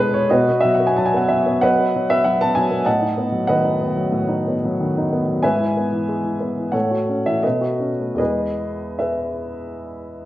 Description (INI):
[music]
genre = classical, romantic character piece for solo piano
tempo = 74-98 BPM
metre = 4/4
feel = rubato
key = unclear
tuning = A4 = 440 Hz
[part]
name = warm upright piano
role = solo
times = 0.0-10.3 s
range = E2 to A5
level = -17 LUFS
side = equal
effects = none
[sound]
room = wet recital hall reverb, RT60 1.3 s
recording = worn, warbling old tape, cassette tape, warbly pitch drift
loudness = -17 LUFS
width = side -14 dB against mid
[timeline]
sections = 0.0-10.3 A section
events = none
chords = 0.3 B; 2.9 B7/A; 5.4 E/G#; 6.7 F#m7/A; 7.4 B9; 8.2 E